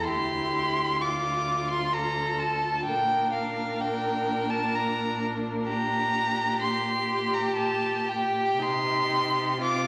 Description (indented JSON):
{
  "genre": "classical, slow romantic movement for string quartet",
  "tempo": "63 BPM",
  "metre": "3/4",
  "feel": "uneven beats, rubato",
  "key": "G minor from 5.7 s",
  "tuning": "A4 = 438 Hz",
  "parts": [
    { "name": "clear violin", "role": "melody", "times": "0.0-9.9 s", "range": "F5 to D6", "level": "-29 LUFS", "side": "equal", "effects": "none" },
    { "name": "rich violin", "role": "second line", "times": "0.0-9.9 s", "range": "F4 to Bb4", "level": "-34 LUFS", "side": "equal", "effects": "none" },
    { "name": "warm viola", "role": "accompaniment", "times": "0.0-9.9 s", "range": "C4 to G4", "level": "-38 LUFS", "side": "equal", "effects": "none" },
    { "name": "clear cello", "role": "bass", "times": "0.0-9.9 s", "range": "D2 to C3", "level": "-36 LUFS", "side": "equal", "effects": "none" }
  ],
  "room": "wet concert hall reverb, RT60 2.0 s",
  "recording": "vinyl crackle",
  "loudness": "-27 LUFS",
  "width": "mono",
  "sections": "0.0-9.9 A section",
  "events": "none",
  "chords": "0.1 Dm; 2.9 Bb; 5.7 Gm/Bb; 8.6 Cm"
}